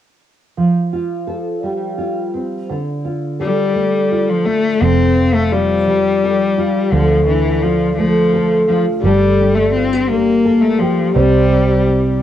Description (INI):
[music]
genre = pop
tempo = 57 BPM (dotted quarters)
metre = 6/8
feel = straight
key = F major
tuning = A4 = 438 Hz
[part]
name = nylon-string guitar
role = accompaniment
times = 0.6-12.2 s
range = C3 to C5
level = -17 LUFS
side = right 2 dB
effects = double-tracked left and right, cassette tape
[part]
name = clear cello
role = melody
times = 3.4-12.2 s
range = E3 to C4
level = -15 LUFS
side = left 4 dB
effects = cassette tape
[part]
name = vintage muted fingered electric bass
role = bass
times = 4.8-12.2 s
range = F1 to D2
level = -18 LUFS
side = right 2 dB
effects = none
[sound]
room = light reverb, small room ambience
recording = home recording on cassette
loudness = -13 LUFS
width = side -11 dB against mid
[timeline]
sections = 0.6-4.8 A section; 4.8-12.2 B section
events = none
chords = 0.6 Fadd9; 2.7 Dm; 4.8 Fadd9; 6.9 Dm; 9.0 Gmadd9; 11.2 C